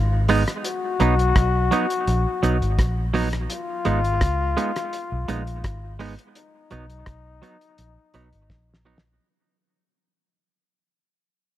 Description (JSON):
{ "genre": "roots reggae", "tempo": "84 BPM", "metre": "4/4", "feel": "straight", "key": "unclear", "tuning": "A4 = 437 Hz", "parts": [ { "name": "brilliant trombone", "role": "second line", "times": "0.0-8.8 s", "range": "D#4 to F#4", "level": "-26 LUFS", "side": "left 6 dB", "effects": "dub echo" }, { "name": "vintage muted fingered electric bass", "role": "bass", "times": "0.0-9.2 s", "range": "Ab1 to Db2", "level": "-23 LUFS", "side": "equal", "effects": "none" }, { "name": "semi-hollow electric guitar", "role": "accompaniment", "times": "0.3-9.0 s", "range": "F#3 to Eb4", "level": "-26 LUFS", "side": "right 5 dB", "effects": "tube saturation, dub echo" }, { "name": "cloth-damped thuddy drum kit", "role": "drums", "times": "0.3-9.1 s", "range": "hi-hat, kick drum, rim click, snare drum", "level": "-25 LUFS", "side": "equal", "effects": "none" } ], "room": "light reverb", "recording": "none", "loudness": "-20 LUFS", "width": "side -13 dB against mid", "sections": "0.0-9.2 A section", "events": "fade-out 0.0-9.2; drum fill 8.5-9.2", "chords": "0.0 Abm; 0.6 B; 3.5 Abm; 6.4 B" }